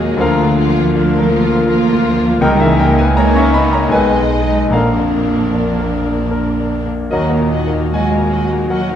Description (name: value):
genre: classical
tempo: 71-82 BPM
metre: 3/4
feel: rubato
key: Eb minor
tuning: A4 = 440 Hz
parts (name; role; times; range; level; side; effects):
- bright grand piano; melody; 0.0-9.0 s; Bb1 to Db6; -16 LUFS; left 2 dB; none
- rich symphonic violin section; melody; 0.0-9.0 s; Ab4 to Eb5; -27 LUFS; left 3 dB; none
- rich symphonic violin section; second line; 0.0-9.0 s; D4 to Gb4; -25 LUFS; left 2 dB; none
- rich studio viola section; accompaniment; 0.0-9.0 s; Gb3 to Bb3; -21 LUFS; right 3 dB; none
- mellow French horn section; sustained chords; 0.0-9.0 s; Bb3 to Gb4; -22 LUFS; left 2 dB; none
- rich studio cello section; bass; 0.0-9.0 s; Eb3 to Db4; -21 LUFS; right 2 dB; none
- rich studio double bass section; bass; 0.0-9.0 s; Bb1 to Eb2; -20 LUFS; right 2 dB; none
- mellow clarinet; second line; 0.2-7.4 s; Bb4 to Cb5; -25 LUFS; left 1 dB; none
- mellow hollow concert flute; second line; 0.2-7.5 s; Ab5 to Bb5; -26 LUFS; left 2 dB; none
- clear bassoon; accompaniment; 0.2-7.4 s; D3 to Gb3; -24 LUFS; right 2 dB; none
- timpani; percussion; 4.7-5.9 s; none; barely audible; none; none
room: wet recital hall reverb, RT60 1.4 s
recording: dark, warm production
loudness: -12 LUFS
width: side -9 dB against mid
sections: 0.0-9.0 A section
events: none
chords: 0.2 Bb/D; 2.4 Eb7/Db; 3.9 Abm/Cb; 4.7 Bb; 7.1 Ebm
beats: | 0.20 0.95 1.69 | 2.42 3.17 3.93 | 4.72 5.53 6.32 | 7.12 7.94 8.71